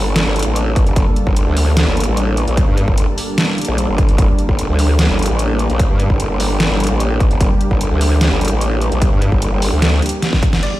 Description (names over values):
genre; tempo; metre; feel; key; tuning
heavy wobble dubstep; 149 BPM; 4/4; half-time; G minor; A4 = 440 Hz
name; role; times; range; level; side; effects
supersaw pad; sustained chords; 0.0-10.8 s; G3 to Bb4; -22 LUFS; equal; vintage 12-bit sampler grit, sidechain pumping, low-pass filter
growl bass; bass; 0.0-10.0 s; F1 to G2; -16 LUFS; equal; chorus, overdrive
dubstep drum kit; drums; 0.2-10.7 s; crash cymbal, hi-hat, snare drum; -20 LUFS; equal; overdrive
electronic kick drum; drums; 0.8-10.5 s; none; -15 LUFS; equal; overdrive
clear concert grand piano; melody; 10.6-10.8 s; G4 to D5; -23 LUFS; right 2 dB; none
room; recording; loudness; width
little or no reverb; played on a big sound system in a bare room, stone room reverb; -13 LUFS; side -16 dB against mid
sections
0.0-10.6 A section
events
drop 0.0-10.6; drum fill 10.2-10.6; band accent 10.5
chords
0.0 Gmadd9